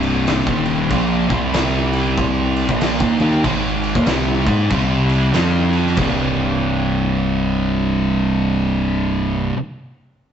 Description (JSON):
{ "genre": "stoner and doom metal", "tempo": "95 BPM", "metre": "4/4", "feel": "swing 62% on 8ths", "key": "C minor", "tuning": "A4 = 440 Hz", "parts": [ { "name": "fuzz guitar", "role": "riff", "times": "0.0-9.6 s", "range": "C2 to Ab4", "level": "-17 LUFS", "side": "equal", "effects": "distortion" }, { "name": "growling fingered electric bass", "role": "bass", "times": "0.0-9.5 s", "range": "C1 to Ab2", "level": "-23 LUFS", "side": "equal", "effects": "overdrive" }, { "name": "oversized low-tuned drum kit", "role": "drums", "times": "0.0-6.2 s", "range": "crash cymbal, kick drum, snare drum, toms", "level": "-21 LUFS", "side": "equal", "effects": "none" } ], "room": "moderate stone room reverb, RT60 1.2 s", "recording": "rough rehearsal-room recording, tube saturation, nothing above 8.0 kHz", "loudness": "-15 LUFS", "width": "side -8 dB against mid", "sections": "0.0-6.0 A section; 6.0-8.5 B section", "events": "none", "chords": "0.0 Cm; 0.9 Bb5; 1.2 C5; 2.7 Bb5; 4.7 C5; 5.3 F5; 6.0 C5" }